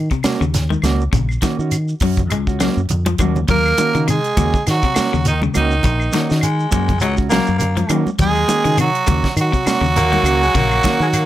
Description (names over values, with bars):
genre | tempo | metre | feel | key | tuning
afrobeat | 102 BPM | 4/4 | swing 56% on 16ths | Eb dorian | A4 = 440 Hz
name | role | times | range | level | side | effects
fingered electric bass | bass | 0.0-11.3 s | Bb1 to Eb3 | -19 LUFS | equal | none
electric guitar at the edge of break-up | arpeggios | 0.1-11.1 s | C3 to Ab3 | -23 LUFS | left 8 dB | none
tight funk drum kit | drums | 0.1-11.3 s | hi-hat, kick drum, snare drum | -22 LUFS | equal | none
shekere | percussion | 0.1-11.3 s | none | -26 LUFS | right 1 dB | none
mellow electric guitar | stabs | 0.2-11.2 s | Bb3 to Gb4 | -24 LUFS | right 6 dB | none
claves | percussion | 0.2-11.3 s | none | -31 LUFS | left 4 dB | none
congas | percussion | 0.2-11.0 s | none | -24 LUFS | right 2 dB | none
growling tenor saxophone | melody | 3.5-11.3 s | Eb4 to Bb4 | -18 LUFS | right 3 dB | none
brilliant trombone | second line | 3.5-11.3 s | Eb3 to Bb3 | -25 LUFS | right 4 dB | plate reverb
raspy baritone saxophone | second line | 6.2-11.3 s | Gb3 to Bb3 | -22 LUFS | left 2 dB | none
room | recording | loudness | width
little or no reverb | none | -14 LUFS | side -13 dB against mid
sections
0.0-11.3 A section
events
drum fill 3.0-3.5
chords
0.0 Ebm7